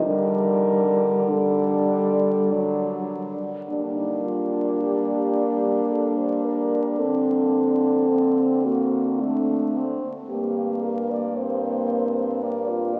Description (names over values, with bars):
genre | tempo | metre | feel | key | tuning
classical, lyrical piece for horn quartet | 47-57 BPM | 3/4 | rubato | G minor | A4 = 441 Hz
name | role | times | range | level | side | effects
mellow French horn | melody | 0.0-13.0 s | D4 to Eb5 | -28 LUFS | equal | none
mellow French horn | second line | 0.0-13.0 s | Bb3 to D4 | -27 LUFS | equal | none
mellow French horn | accompaniment | 0.0-13.0 s | F#3 to D4 | -29 LUFS | equal | none
warm French horn | bass | 0.0-13.0 s | G2 to G3 | -33 LUFS | equal | none
room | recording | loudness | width
wet cathedral reverb, RT60 7.0 s | very old 78 rpm record, vinyl crackle | -23 LUFS | mono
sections
0.0-3.7 A section; 3.7-13.0 B section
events
none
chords
0.0 Dsus4; 2.5 D; 3.7 Gm; 7.0 D5; 10.3 Gm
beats
| 0.05 1.30 2.52 | 3.69 4.82 5.92 | 7.00 8.09 9.20 | 10.30 11.37 12.43